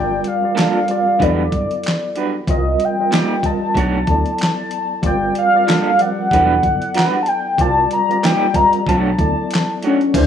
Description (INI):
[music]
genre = R&B, neo-soul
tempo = 94 BPM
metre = 4/4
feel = swing 57% on 16ths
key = unclear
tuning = A4 = 444 Hz
[part]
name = warm velvety synth lead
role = melody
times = 0.0-10.3 s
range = C#4 to Bb5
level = -17 LUFS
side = left 1 dB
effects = chorus, tremolo, slapback echo
[part]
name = tine electric piano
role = accompaniment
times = 0.0-10.3 s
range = E3 to Eb5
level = -22 LUFS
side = equal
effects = overdrive, fast stereo tremolo
[part]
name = smooth synth bass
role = bass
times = 0.0-10.3 s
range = E1 to D2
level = -20 LUFS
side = equal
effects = none
[part]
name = dusty soul sampler-style drum kit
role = drums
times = 0.2-10.3 s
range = crash cymbal, handclaps, hi-hat, kick drum, snare drum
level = -20 LUFS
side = equal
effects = none
[part]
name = electric guitar through a small old amp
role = second line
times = 0.5-10.0 s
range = F3 to D5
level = -22 LUFS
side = right 5 dB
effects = tremolo
[sound]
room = light reverb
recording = rough home demo mix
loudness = -14 LUFS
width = side -8 dB against mid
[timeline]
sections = 0.0-10.1 A section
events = none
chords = 0.0 Gm7; 1.2 Em9; 2.5 Cm7; 3.8 Bm7; 5.0 Gm7; 6.3 Em9; 7.6 Cm9; 8.9 Bm9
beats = 0.56 1.20 1.84 | 2.48 3.12 3.76 4.39 | 5.03 5.67 6.31 6.95 | 7.59 8.22 8.86 9.50 | 10.14